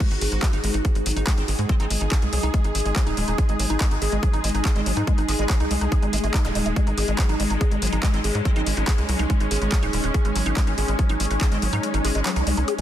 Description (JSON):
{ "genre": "psychedelic trance", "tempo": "142 BPM", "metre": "4/4", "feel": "straight", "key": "G# major", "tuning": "A4 = 440 Hz", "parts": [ { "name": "swarming drone", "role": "sustained chords", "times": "0.0-12.8 s", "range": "G#3 to G#4", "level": "-30 LUFS", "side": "equal", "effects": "built-in reverb, phaser, sidechain pumping" }, { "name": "woody wave-folded pluck", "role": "riff", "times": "0.0-12.8 s", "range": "F#3 to G#4", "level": "-28 LUFS", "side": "equal", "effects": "chorus, auto-pan, sidechain pumping, ping-pong delay" }, { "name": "electronic kick drum", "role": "drums", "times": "0.0-11.5 s", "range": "none", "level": "-21 LUFS", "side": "equal", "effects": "overdrive" }, { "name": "techno drum kit", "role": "drums", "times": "0.0-12.8 s", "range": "crash cymbal, handclaps, hi-hat", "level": "-29 LUFS", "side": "equal", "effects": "overdrive" }, { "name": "granular cloud pad", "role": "texture", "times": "0.0-12.8 s", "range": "D#4 to D#5", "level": "-32 LUFS", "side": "equal", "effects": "built-in reverb, sidechain pumping" }, { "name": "tight sequencer bass", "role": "bass", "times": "0.1-12.8 s", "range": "D#1 to G#2", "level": "-24 LUFS", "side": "equal", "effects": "none" }, { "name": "metallic wobble bass", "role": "second line", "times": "1.3-1.9, 4.7-5.5, 8.0-8.6, 11.4-12.2 s", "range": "G#3 to B#3", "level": "-38 LUFS", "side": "right 1 dB", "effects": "none" }, { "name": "zap", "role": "sound effects", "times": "6.4-6.6 s", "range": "none", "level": "-36 LUFS", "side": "right 3 dB", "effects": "none" } ], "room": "digital ambience", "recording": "dense, heavily limited modern master", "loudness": "-20 LUFS", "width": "side -11 dB against mid", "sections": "0.0-12.8 A section", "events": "kick drops out 11.8-12.8", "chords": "0.0 G#5" }